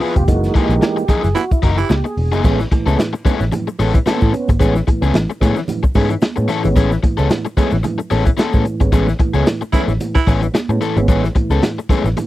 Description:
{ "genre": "funk", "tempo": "111 BPM", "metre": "4/4", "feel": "swing 56% on 16ths", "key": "unclear", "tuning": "A4 = 440 Hz", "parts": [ { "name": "overdriven electric guitar", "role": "accompaniment", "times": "0.0-12.2 s", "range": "Fb3 to Bb4", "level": "-21 LUFS", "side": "left 6 dB", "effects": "none" }, { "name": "mellow tonewheel organ", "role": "stabs", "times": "0.0-12.3 s", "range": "A2 to Cb5", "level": "-21 LUFS", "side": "right 2 dB", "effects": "chorus vibrato, slow rotary speaker, slapback echo" }, { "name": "crunchy breakbeat drum kit", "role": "drums", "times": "0.0-12.3 s", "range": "crash cymbal, hi-hat, kick drum, snare drum", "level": "-16 LUFS", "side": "equal", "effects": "none" }, { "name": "vintage muted picked electric bass", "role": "bass", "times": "0.2-12.1 s", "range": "Fb1 to A2", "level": "-17 LUFS", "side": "equal", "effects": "none" }, { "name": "congas", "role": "percussion", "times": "0.2-12.3 s", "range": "none", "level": "-27 LUFS", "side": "right 6 dB", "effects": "none" }, { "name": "egg shaker", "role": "percussion", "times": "0.2-12.3 s", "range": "none", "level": "-47 LUFS", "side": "left 5 dB", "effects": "none" }, { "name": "growling tenor saxophone", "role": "second line", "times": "1.3-1.9, 9.7-10.3 s", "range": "E4 to Fb4", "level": "-20 LUFS", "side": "right 6 dB", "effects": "none" } ], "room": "little or no reverb", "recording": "dry, close 1970s-style studio recording", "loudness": "-14 LUFS", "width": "side -15 dB against mid", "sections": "0.0-2.4 A section; 2.4-12.3 B section", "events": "tonewheel organ solo 0.0-2.4; band accent 8.9-11.1", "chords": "0.3 Gb13; 2.4 Amaj7", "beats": "| 0.28 0.82 1.36 1.90 | 2.44 2.98 3.52 4.06 | 4.60 5.14 5.68 6.22 | 6.76 7.30 7.84 8.38 | 8.92 9.46 10.01 10.54 | 11.09 11.63 12.17" }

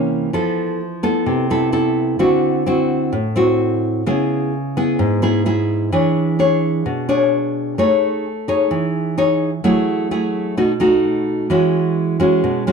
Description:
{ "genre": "bossa nova", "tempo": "129 BPM", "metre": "4/4", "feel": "straight", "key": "E major", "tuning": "A4 = 439 Hz", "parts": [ { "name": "nylon-string guitar", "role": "solo", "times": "0.0-12.7 s", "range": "G#2 to C#5", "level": "-15 LUFS", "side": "equal", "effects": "none" } ], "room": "light reverb", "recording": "dark, warm production", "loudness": "-15 LUFS", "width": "side -5 dB against mid", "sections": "0.0-12.7 A section", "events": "none", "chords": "0.3 Fmaj7#11; 2.2 D9; 4.1 C#m7; 5.9 E6; 7.8 Amaj7#11; 9.6 F#m9; 10.6 B7; 11.5 E69", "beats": "| 0.33 0.80 1.26 1.73 | 2.19 2.66 3.13 3.59 | 4.06 4.52 4.99 5.46 | 5.92 6.39 6.85 7.32 | 7.78 8.25 8.72 9.18 | 9.65 10.11 10.58 11.04 | 11.51 11.97 12.44" }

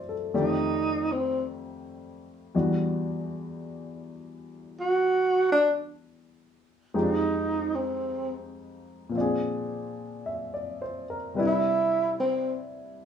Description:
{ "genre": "jazz", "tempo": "54 BPM", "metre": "4/4", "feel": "swing 69% on 8ths", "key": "unclear", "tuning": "A4 = 440 Hz", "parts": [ { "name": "warm baby grand piano", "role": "accompaniment", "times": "0.0-13.1 s", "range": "E2 to E5", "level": "-29 LUFS", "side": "left 2 dB", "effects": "none" }, { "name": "breathy tenor saxophone", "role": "melody", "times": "0.4-12.5 s", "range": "C4 to F#4", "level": "-24 LUFS", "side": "right 2 dB", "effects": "none" } ], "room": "light reverb", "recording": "small room reverb", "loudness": "-25 LUFS", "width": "side -8 dB against mid", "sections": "0.0-13.1 A section", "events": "tenor saxophone solo 0.0-13.1", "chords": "0.3 F13; 2.5 Em9; 6.9 Fm7; 9.1 Bb9; 11.4 Cmaj9", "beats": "0.34 1.44 | 2.54 3.63 4.74 5.84 | 6.94 8.04 9.15 10.27 | 11.38 12.49" }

